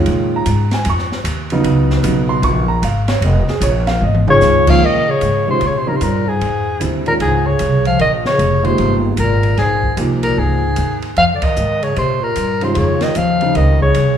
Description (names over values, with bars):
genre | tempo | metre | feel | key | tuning
modal jazz | 151 BPM | 4/4 | swing 64% on 8ths | Bb dorian from 4.8 s | A4 = 439 Hz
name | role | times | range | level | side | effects
warm grand piano | accompaniment | 0.0-13.9 s | A#2 to C#6 | -19 LUFS | right 2 dB | none
upright bass | bass | 0.0-14.2 s | E#1 to A#2 | -17 LUFS | equal | none
open jazz drum kit | drums | 0.1-14.1 s | crash cymbal, hi-hat, kick drum, ride cymbal, snare drum, toms | -24 LUFS | equal | none
warm soprano saxophone | melody | 4.3-14.2 s | Ab4 to F5 | -16 LUFS | equal | none
mellow bass clarinet | second line | 4.3-14.2 s | Ab2 to F3 | -20 LUFS | left 3 dB | none
room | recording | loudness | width
moderate recital hall reverb, RT60 1.6 s | recorded in a church or concert hall | -13 LUFS | side -9 dB against mid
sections
0.0-4.8 A section; 4.8-14.2 B section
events
drum fill 4.0-4.4; band accent 11.4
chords
0.0 A#m7; 4.8 Bbm7